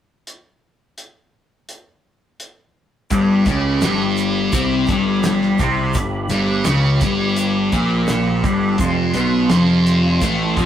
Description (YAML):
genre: psychedelic rock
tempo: 84 BPM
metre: 4/4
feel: straight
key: G mixolydian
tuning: A4 = 440 Hz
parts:
  - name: cloth-damped thuddy drum kit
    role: drums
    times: 0.3-10.7 s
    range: hi-hat, kick drum, snare drum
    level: -23 LUFS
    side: right 1 dB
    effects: none
  - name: percussive tonewheel organ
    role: sustained chords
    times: 3.1-10.7 s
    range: F4 to C6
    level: -28 LUFS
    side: right 3 dB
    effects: slow rotary speaker, overdrive, chorus vibrato
  - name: thick fuzz guitar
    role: riff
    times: 3.1-10.7 s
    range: F2 to C#4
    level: -16 LUFS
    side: left 1 dB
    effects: distortion, phaser
  - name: fuzz picked electric bass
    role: bass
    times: 3.1-10.7 s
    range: F1 to C#2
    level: -22 LUFS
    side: right 1 dB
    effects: overdrive
  - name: tube shaker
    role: percussion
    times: 3.1-10.7 s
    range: none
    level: -38 LUFS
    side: left 3 dB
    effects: none
room: wet studio reverb, RT60 0.5 s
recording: rough rehearsal-room recording, tube saturation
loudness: -15 LUFS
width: side -10 dB against mid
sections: 0.3-3.1 A section; 3.1-10.7 B section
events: none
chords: 0.3 N.C.; 3.1 G; 8.8 F5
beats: | 0.26 0.97 1.68 2.40 | 3.11 3.82 4.53 5.24 | 5.95 6.66 7.37 8.08 | 8.79 9.51 10.22